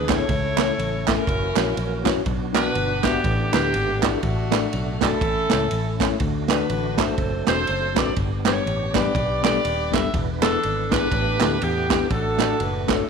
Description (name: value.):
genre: uptempo gospel.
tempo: 122 BPM.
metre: 4/4.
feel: swing 58% on 8ths.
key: D major.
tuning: A4 = 441 Hz.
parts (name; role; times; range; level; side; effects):
clear saxophone section; melody; 0.0-13.1 s; A3 to E5; -25 LUFS; equal; slapback echo.
mellow tine electric piano; accompaniment; 0.0-13.0 s; G2 to E5; -26 LUFS; left 13 dB; medium stereo tremolo.
percussive tonewheel organ; sustained chords; 0.0-13.1 s; E3 to B4; -32 LUFS; right 11 dB; slow rotary speaker, overdrive, chorus vibrato.
fingered electric bass; bass; 0.0-13.0 s; Eb1 to E2; -27 LUFS; left 1 dB; none.
swinging big-band drum kit; drums; 0.1-13.0 s; kick drum, ride cymbal, snare drum; -26 LUFS; right 5 dB; none.
group handclap; percussion; 0.1-13.0 s; none; -28 LUFS; right 13 dB; none.
room: light reverb, studio reverb.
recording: 1960s-style stereo with parts hard left and right.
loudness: -19 LUFS.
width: side -6 dB against mid.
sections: 0.0-13.1 A section.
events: none.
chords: 0.3 A/C#; 1.3 F#7; 2.3 Bm; 3.2 A9sus4; 4.2 D/A; 5.2 A; 6.2 D; 7.2 D7; 8.2 G; 10.1 E7; 11.1 A9sus4; 12.1 D/A.